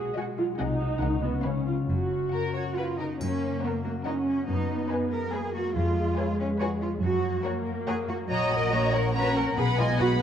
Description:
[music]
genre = cinematic, playful, whimsical film cue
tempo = 141 BPM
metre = 3/4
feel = straight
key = F# major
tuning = A4 = 437 Hz
[part]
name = rich studio violin section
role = melody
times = 0.0-10.2 s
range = E#5 to B5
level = -36 LUFS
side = left 2 dB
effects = none
[part]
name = rich studio violin section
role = second line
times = 0.0-10.2 s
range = F#4 to G#5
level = -33 LUFS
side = left 3 dB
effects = none
[part]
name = dark studio viola section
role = accompaniment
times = 0.0-10.2 s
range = F#3 to G#4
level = -30 LUFS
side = right 2 dB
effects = none
[part]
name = concert harp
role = arpeggios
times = 0.0-10.2 s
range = E#2 to B4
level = -32 LUFS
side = left 6 dB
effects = none
[part]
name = warm studio cello section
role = bass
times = 0.6-10.1 s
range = F#2 to D#5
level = -31 LUFS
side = right 2 dB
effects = none
[part]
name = warm studio double bass section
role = bass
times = 0.6-10.2 s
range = F#1 to F#2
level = -31 LUFS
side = right 3 dB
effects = none
[part]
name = triangle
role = percussion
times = 3.2-4.0 s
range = none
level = -50 LUFS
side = left 2 dB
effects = none
[sound]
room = wet concert hall reverb, RT60 2.2 s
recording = dark, warm production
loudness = -25 LUFS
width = side -9 dB against mid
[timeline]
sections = 0.0-3.2 A section; 3.2-10.2 A section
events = none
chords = 0.0 G#m7/B; 0.6 G#7/B#; 1.0 F#/C#; 1.4 C#7; 1.9 F#; 4.5 G#m7/F#; 5.8 C#7/E#; 7.0 F#; 8.3 F#/A#; 9.6 G#m7/B

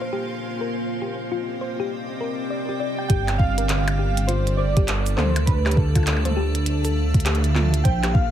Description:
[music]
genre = IDM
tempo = 101 BPM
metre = 4/4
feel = swing 62% on 16ths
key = G minor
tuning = A4 = 441 Hz
[part]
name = icy glass pad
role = sustained chords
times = 0.0-8.3 s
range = G3 to F5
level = -28 LUFS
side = equal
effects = chorus, built-in reverb
[part]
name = thumb-piano-like synth pluck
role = arpeggios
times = 0.0-8.1 s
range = F4 to G5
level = -30 LUFS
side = left 5 dB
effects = chorus, vintage 12-bit sampler grit, digital delay
[part]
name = flickering grainy texture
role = texture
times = 0.0-3.1 s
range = C5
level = -43 LUFS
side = right 2 dB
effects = none
[part]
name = warbly lo-fi synth keys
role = melody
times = 3.1-8.3 s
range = A4 to G5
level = -28 LUFS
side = right 2 dB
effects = chorus, vintage 12-bit sampler grit, dub echo
[part]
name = dark detuned saw bass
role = bass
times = 3.1-8.3 s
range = G1 to D2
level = -21 LUFS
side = right 1 dB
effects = none
[part]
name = electronic kick drum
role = drums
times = 3.1-8.3 s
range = none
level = -19 LUFS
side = equal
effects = overdrive
[part]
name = glitchy drum kit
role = drums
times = 3.1-8.1 s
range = cabasa, handclaps, hi-hat, percussion blips, toms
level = -27 LUFS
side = right 1 dB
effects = overdrive
[sound]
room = digital ambience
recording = none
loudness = -20 LUFS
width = side -10 dB against mid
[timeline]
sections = 0.0-3.1 A section; 3.1-8.3 B section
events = none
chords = 0.0 Bbmadd9; 0.7 Cm9; 3.1 Gm9; 5.2 Dm9

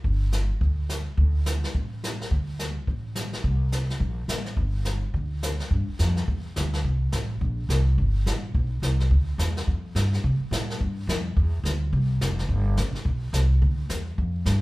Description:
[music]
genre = country, western swing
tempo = 212 BPM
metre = 4/4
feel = swing 62% on 8ths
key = G mixolydian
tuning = A4 = 439 Hz
[part]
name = upright bass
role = bass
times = 0.0-14.6 s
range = F1 to C3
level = -24 LUFS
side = equal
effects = none
[part]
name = jazz brush drum kit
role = drums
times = 0.0-14.6 s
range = brushed snare drum, hi-hat, kick drum, snare drum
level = -29 LUFS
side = left 1 dB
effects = none
[sound]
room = light reverb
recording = band playing live in one room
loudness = -23 LUFS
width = side -20 dB against mid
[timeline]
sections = 0.0-5.7 A section; 5.7-14.6 B section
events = none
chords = none

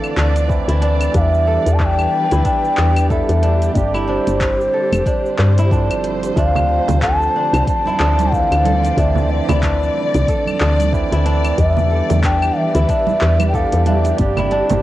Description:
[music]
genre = organic downtempo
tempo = 92 BPM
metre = 4/4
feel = swing 58% on 16ths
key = D dorian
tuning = A4 = 440 Hz
[part]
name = barky tine electric piano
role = accompaniment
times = 0.0-14.8 s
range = D3 to G4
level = -24 LUFS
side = right 6 dB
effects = sidechain pumping, cassette tape, tape echo
[part]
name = warm studio string section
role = sustained chords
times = 0.0-14.8 s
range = D3 to D5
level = -26 LUFS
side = left 1 dB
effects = sidechain pumping, cassette tape
[part]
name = kora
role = arpeggios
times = 0.0-14.8 s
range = D4 to A4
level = -24 LUFS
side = right 1 dB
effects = cassette tape, tape echo
[part]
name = afro-pop drum kit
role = drums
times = 0.0-14.8 s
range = cabasa, claves, handclaps, hi-hat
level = -26 LUFS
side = left 1 dB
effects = overdrive, cassette tape
[part]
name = woody FM bass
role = bass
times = 0.2-14.8 s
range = F1 to G2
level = -16 LUFS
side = left 1 dB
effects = tube saturation
[part]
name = electronic kick drum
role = drums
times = 0.5-14.3 s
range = none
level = -21 LUFS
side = left 1 dB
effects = overdrive, cassette tape
[part]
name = mellow hollow bass bansuri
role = melody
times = 1.2-14.8 s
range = C5 to A5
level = -19 LUFS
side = left 1 dB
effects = cassette tape, tape echo
[part]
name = congas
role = percussion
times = 6.6-14.8 s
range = none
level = -24 LUFS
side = right 7 dB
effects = none
[sound]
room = light reverb, small room reverb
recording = home recording on cassette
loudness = -14 LUFS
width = side -15 dB against mid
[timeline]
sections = 0.0-14.8 A section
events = none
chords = 0.0 Dm7; 1.1 Em7; 3.8 Gsus4; 6.4 Dm7; 11.6 Em7; 14.2 Gsus4

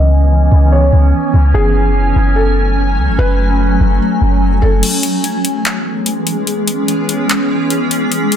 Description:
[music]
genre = hip hop, atmospheric cloud-rap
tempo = 146 BPM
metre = 4/4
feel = half-time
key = C# minor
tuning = A4 = 440 Hz
[part]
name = felt-muted upright piano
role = melody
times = 0.0-4.8 s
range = G#4 to D#5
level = -21 LUFS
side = left 1 dB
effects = low-pass filter, tape echo
[part]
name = granular cloud pad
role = sustained chords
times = 0.0-8.4 s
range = E3 to G#5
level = -15 LUFS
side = equal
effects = built-in reverb, low-pass filter
[part]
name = warm 808-style bass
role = bass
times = 0.0-4.8 s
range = F#1 to C#2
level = -11 LUFS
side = equal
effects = none
[part]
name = trap drum kit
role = drums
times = 4.8-8.4 s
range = crash cymbal, handclaps, hi-hat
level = -18 LUFS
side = left 2 dB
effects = none
[sound]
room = light reverb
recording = dense, heavily limited modern master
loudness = -11 LUFS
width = side -9 dB against mid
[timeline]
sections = 0.0-4.8 A section; 4.8-8.4 B section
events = filter sweep 0.0-4.8; break 4.8-8.4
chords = 0.0 C#m7; 1.5 F#madd9; 4.8 C#m7

